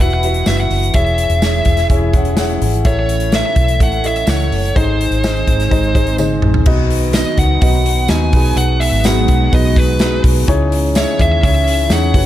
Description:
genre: piano-driven pop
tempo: 126 BPM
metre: 4/4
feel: straight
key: C# minor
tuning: A4 = 444 Hz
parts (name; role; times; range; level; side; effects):
- fuzz lead guitar; melody; 0.0-12.3 s; B4 to G#5; -19 LUFS; equal; distortion, slapback echo
- clear upright piano; accompaniment; 0.0-12.3 s; G#2 to F#5; -19 LUFS; left 1 dB; slapback echo
- lush unison pad; sustained chords; 0.0-12.3 s; C#3 to B4; -26 LUFS; right 1 dB; chorus, phaser
- vintage muted fingered electric bass; bass; 0.0-12.3 s; E1 to E2; -16 LUFS; equal; none
- natural country drum kit; drums; 0.1-12.3 s; crash cymbal, hi-hat, kick drum, snare drum, toms; -16 LUFS; equal; none
- tambourine; percussion; 0.5-12.0 s; none; -32 LUFS; right 9 dB; none
room: light reverb, small room ambience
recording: none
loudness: -12 LUFS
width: side -13 dB against mid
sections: 0.0-6.7 A section; 6.7-12.3 B section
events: drum fill 6.2-6.7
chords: 0.0 Esus2; 0.9 C#m/E; 2.9 A; 4.8 G#; 6.7 B; 8.3 G#m7; 10.5 C#madd9

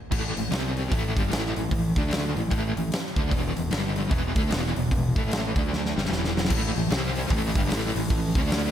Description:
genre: blues rock power trio and southern rock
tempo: 150 BPM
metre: 4/4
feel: swing 62% on 8ths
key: unclear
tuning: A4 = 440 Hz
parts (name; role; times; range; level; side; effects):
- overdriven electric guitar; riff; 0.1-8.7 s; E2 to D4; -27 LUFS; left 1 dB; tremolo
- fuzz fingered electric bass; bass; 0.1-8.7 s; E1 to D2; -29 LUFS; equal; overdrive
- big rock drum kit; drums; 0.1-8.6 s; crash cymbal, hi-hat, kick drum, snare drum; -27 LUFS; equal; none
room: light reverb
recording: none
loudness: -23 LUFS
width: side -10 dB against mid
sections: 0.1-6.5 A section; 6.5-8.7 A section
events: drum fill 5.7-6.5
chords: 0.1 A5; 0.5 C5; 0.9 A5; 1.9 D5; 2.3 A5; 3.3 E5; 3.7 G5; 4.1 E5; 5.1 A5; 5.5 D5; 5.9 E5; 6.5 A5; 6.9 C5; 7.3 A5; 8.3 D5

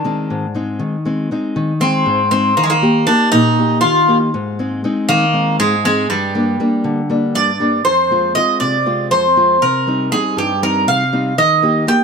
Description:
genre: greek folk, Greek bouzouki band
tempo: 239 BPM (eighths)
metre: 7/8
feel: straight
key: unclear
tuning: A4 = 442 Hz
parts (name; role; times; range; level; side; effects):
- Greek bouzouki; melody; 0.0-12.0 s; G3 to G5; -14 LUFS; right 1 dB; none
- nylon-string guitar; accompaniment; 0.0-12.0 s; F2 to G4; -17 LUFS; left 1 dB; none
room: light reverb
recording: close, detailed microphones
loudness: -13 LUFS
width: side -5 dB against mid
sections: 0.0-7.9 A section; 7.9-12.0 B section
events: none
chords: 0.0 Ab; 2.6 Eb; 4.3 Ab; 6.1 Gm; 7.9 Fm; 9.6 Cm; 11.4 Eb

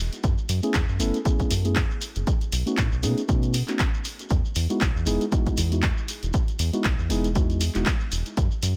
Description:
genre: deep house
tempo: 118 BPM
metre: 4/4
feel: swing 56% on 16ths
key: E major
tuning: A4 = 442 Hz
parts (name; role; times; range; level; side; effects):
- round analog bass; bass; 0.0-8.7 s; E1 to B2; -28 LUFS; equal; sidechain pumping
- punchy analog drum machine; drums; 0.1-8.7 s; handclaps, hi-hat; -34 LUFS; equal; none
- shekere; percussion; 0.1-8.7 s; none; -38 LUFS; equal; none
- electronic kick drum; drums; 0.2-8.5 s; none; -27 LUFS; equal; none
- mellow tine electric piano; stabs; 0.6-7.9 s; G#3 to A4; -31 LUFS; equal; sidechain pumping, low-pass filter, dub echo
room: little or no reverb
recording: none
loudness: -24 LUFS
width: mono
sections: 0.0-8.8 A section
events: filter sweep on tine electric piano 0.0-8.8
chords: 0.2 F#m11; 2.3 B7; 4.3 Emaj9

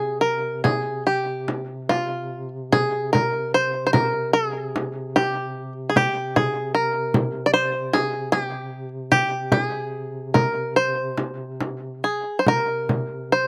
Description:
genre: caucasian folk, Caucasian lament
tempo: 74 BPM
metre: 4/4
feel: uneven beats, rubato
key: unclear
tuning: A4 = 440 Hz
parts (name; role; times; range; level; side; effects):
- bluegrass banjo; melody; 0.0-13.5 s; F4 to D5; -24 LUFS; equal; slapback echo
- dark duduk; drone; 0.0-13.5 s; C3; -35 LUFS; equal; none
- frame drum; percussion; 0.6-13.1 s; none; -26 LUFS; equal; none
room: little or no reverb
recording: recorded outdoors, with no room sound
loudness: -23 LUFS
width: mono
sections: 0.0-13.5 A section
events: none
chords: none

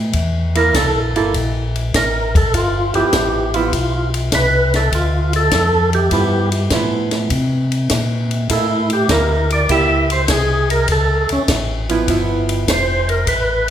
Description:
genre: soul jazz organ trio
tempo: 101 BPM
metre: 4/4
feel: swing 69% on 8ths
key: unclear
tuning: A4 = 440 Hz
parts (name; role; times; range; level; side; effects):
- mellow tonewheel organ; bass; 0.0-13.7 s; F1 to C3; -19 LUFS; equal; chorus vibrato, slow rotary speaker
- compact cocktail drum kit; drums; 0.1-13.7 s; hi-hat, kick drum, ride cymbal, snare drum; -21 LUFS; left 1 dB; none
- percussive tonewheel organ; melody; 0.6-13.7 s; C#4 to E5; -17 LUFS; right 1 dB; slow rotary speaker, overdrive, chorus vibrato
- archtop guitar, miked and amplified; accompaniment; 0.6-13.0 s; F3 to A4; -21 LUFS; right 4 dB; none
room: wet recital hall reverb, RT60 1.6 s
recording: recorded in a church or concert hall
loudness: -14 LUFS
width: side -10 dB against mid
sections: 0.0-13.7 A section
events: tonewheel organ solo 0.0-13.7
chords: 0.1 C6; 2.5 G13; 4.9 Dm; 6.1 G13; 7.3 C13; 9.7 C#dim7; 12.1 G13

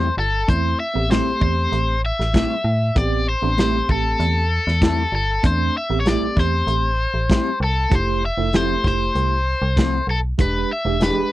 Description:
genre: straight-eighth soul blues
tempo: 97 BPM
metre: 4/4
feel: straight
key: A minor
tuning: A4 = 443 Hz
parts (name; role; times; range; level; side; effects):
- overdriven electric guitar; melody; 0.0-11.3 s; A4 to E5; -22 LUFS; left 2 dB; none
- electric guitar through a small old amp; stabs; 0.0-11.2 s; A2 to G4; -24 LUFS; left 4 dB; ensemble chorus
- metallic FM bass; bass; 0.0-11.2 s; E1 to A2; -22 LUFS; equal; none
- barky tine electric piano; accompaniment; 0.5-11.3 s; G#3 to A4; -25 LUFS; right 6 dB; medium stereo tremolo
- crunchy breakbeat drum kit; drums; 0.5-11.2 s; hi-hat, kick drum, snare drum; -19 LUFS; equal; none
room: little or no reverb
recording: dry, close 1970s-style studio recording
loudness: -17 LUFS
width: side -15 dB against mid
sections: 0.0-11.3 A section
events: none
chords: 0.0 Am7; 7.9 Fmaj7; 10.4 E7#9

